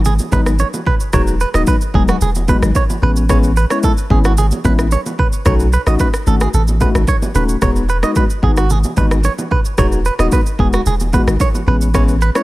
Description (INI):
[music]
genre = afrobeats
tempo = 111 BPM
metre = 4/4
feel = straight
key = E major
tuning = A4 = 440 Hz
[part]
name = punchy sub bass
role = bass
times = 0.0-12.3 s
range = D#1 to B1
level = -15 LUFS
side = equal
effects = none
[part]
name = direct-recorded clean electric guitar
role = riff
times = 0.1-12.4 s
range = F#4 to D#5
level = -21 LUFS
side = right 5 dB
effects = tape echo
[part]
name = afro-pop drum kit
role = drums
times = 0.1-12.4 s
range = kick drum, rim click, shaker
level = -17 LUFS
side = equal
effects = none
[part]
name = congas and bongos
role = percussion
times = 0.1-12.1 s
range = none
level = -24 LUFS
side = right 2 dB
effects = none
[part]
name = bell-like tine electric piano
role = accompaniment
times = 0.3-12.4 s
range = F#3 to F#4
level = -20 LUFS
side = left 4 dB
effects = phaser
[sound]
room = digital ambience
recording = none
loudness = -12 LUFS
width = side -18 dB against mid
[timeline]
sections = 0.0-12.4 A section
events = none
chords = 0.0 Emaj7; 3.0 Amaj7; 5.5 B7; 7.6 Emaj7; 11.7 Amaj7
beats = 0.05 0.59 | 1.13 1.67 2.21 2.75 | 3.29 3.83 4.38 4.92 | 5.46 6.00 6.54 7.08 | 7.62 8.16 8.70 9.24 | 9.78 10.32 10.86 11.40 | 11.94